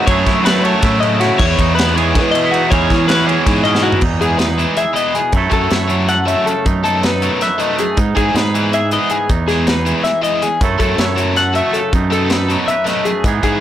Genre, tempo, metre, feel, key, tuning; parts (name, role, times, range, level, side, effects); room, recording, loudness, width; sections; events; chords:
math rock and midwest emo; 319 BPM (eighths); 7/8; straight; E major; A4 = 440 Hz
twangy electric guitar; accompaniment; 0.0-13.6 s; E2 to B4; -19 LUFS; right 7 dB
twelve-string electric guitar; arpeggios; 0.0-13.6 s; F#4 to F#5; -18 LUFS; left 5 dB
biting overdriven guitar; riff; 0.0-13.6 s; E3 to A4; -20 LUFS; equal
modern bright fingered electric bass; bass; 0.1-13.6 s; E2 to F#3; -18 LUFS; equal
crisp fusion drum kit; drums; 0.1-13.5 s; crash cymbal, hi-hat, kick drum, ride cymbal, snare drum, toms; -19 LUFS; equal
light reverb; blown-out, overdriven recording, overdrive; -12 LUFS; side -11 dB against mid
0.0-4.0 A section; 4.0-13.6 B section
drum fill 3.7
0.1 F#m9; 1.4 Emaj7; 2.7 Emaj13; 4.0 Emaj7; 5.3 F#m7; 6.7 B7/F#; 8.0 Emaj7/G#; 9.3 Emaj7; 10.6 F#m7; 11.9 B7/F#